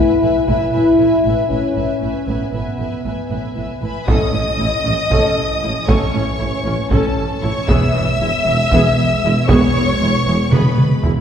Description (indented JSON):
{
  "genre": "cinematic, epic orchestral film score",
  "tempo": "233 BPM (eighths)",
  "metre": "7/8",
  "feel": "straight",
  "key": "unclear",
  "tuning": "A4 = 440 Hz",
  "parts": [
    { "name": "warm symphonic violin section", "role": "melody", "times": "0.0-11.0 s", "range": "G#5 to E6", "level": "-25 LUFS", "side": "left 3 dB", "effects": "none" },
    { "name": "warm symphonic violin section", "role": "second line", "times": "0.0-11.0 s", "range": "A4 to E5", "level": "-23 LUFS", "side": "left 1 dB", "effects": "none" },
    { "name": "warm symphonic viola section", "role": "accompaniment", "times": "0.0-11.1 s", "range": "E3 to B4", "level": "-24 LUFS", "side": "equal", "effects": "none" },
    { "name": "mellow French horn section", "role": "sustained chords", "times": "0.0-11.1 s", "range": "E3 to E4", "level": "-20 LUFS", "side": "left 2 dB", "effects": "none" },
    { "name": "dark symphonic cello section", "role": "bass", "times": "0.0-11.1 s", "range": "E2 to A2", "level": "-24 LUFS", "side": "right 2 dB", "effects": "none" },
    { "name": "warm symphonic double bass section", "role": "bass", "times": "0.0-11.1 s", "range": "E1 to A1", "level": "-22 LUFS", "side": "right 2 dB", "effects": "none" },
    { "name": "solo taiko drums", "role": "drums", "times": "0.5-11.2 s", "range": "none", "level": "-19 LUFS", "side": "right 1 dB", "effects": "none" },
    { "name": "mellow tuba", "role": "bass", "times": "4.1-11.1 s", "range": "E1 to A1", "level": "-24 LUFS", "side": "right 1 dB", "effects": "none" }
  ],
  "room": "wet scoring stage reverb, RT60 1.7 s",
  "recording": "heard from further back in the room",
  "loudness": "-14 LUFS",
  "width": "side -8 dB against mid",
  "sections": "0.0-4.1 A section; 4.1-11.2 B section",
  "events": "drum fill 10.5-11.2",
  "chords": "0.0 E/A; 4.1 A; 7.7 E"
}